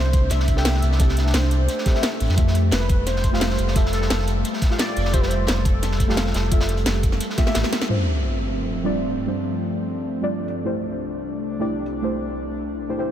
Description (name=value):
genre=liquid drum and bass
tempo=174 BPM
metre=4/4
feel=straight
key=F major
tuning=A4 = 440 Hz
part: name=warm velvety synth lead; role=melody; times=0.0-7.5 s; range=A4 to E5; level=-30 LUFS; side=equal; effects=chorus, ping-pong delay
part: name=deep mellow chord stab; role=accompaniment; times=0.0-13.1 s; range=G3 to G5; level=-28 LUFS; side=right 1 dB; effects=chorus, analog delay
part: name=airy breathy pad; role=sustained chords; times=0.0-13.1 s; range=C2 to D4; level=-28 LUFS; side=left 1 dB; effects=chorus, sidechain pumping
part: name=sub bass with octave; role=bass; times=0.0-7.6 s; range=F1 to F2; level=-21 LUFS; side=equal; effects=none
part: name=crunchy breakbeat drum kit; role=drums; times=0.1-7.9 s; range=hi-hat, snare drum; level=-31 LUFS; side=equal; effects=high-pass filter on hats, high-pass filter on snare, high-pass filter on room
part: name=drum and bass drum kit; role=drums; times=0.1-11.9 s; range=hi-hat, snare drum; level=-28 LUFS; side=equal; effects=low-pass filter on hats, low-pass filter on snare, low-pass filter on room
part: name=electronic kick drum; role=drums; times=0.1-7.5 s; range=none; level=-20 LUFS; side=equal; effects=none
part: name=sub drop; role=sound effects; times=7.9-9.3 s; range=none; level=-25 LUFS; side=equal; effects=none
room=light reverb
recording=none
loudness=-19 LUFS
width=side -10 dB against mid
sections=0.0-7.9 A section; 7.9-13.1 B section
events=drum fill 7.4-7.9; band accent 7.8; impact 7.9-9.3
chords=0.0 C6; 2.4 Fmaj9; 7.9 G7sus4; 10.7 C6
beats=0.31 0.66 | 1.00 1.34 1.69 2.03 | 2.38 2.72 3.07 3.41 | 3.76 4.10 4.45 4.79 | 5.14 5.48 5.83 6.17 | 6.52 6.86 7.21 7.55 | 7.90 8.24 8.59 8.93 | 9.28 9.62 9.96 10.31 | 10.65 11.00 11.35 11.69 | 12.03 12.38 12.72 13.07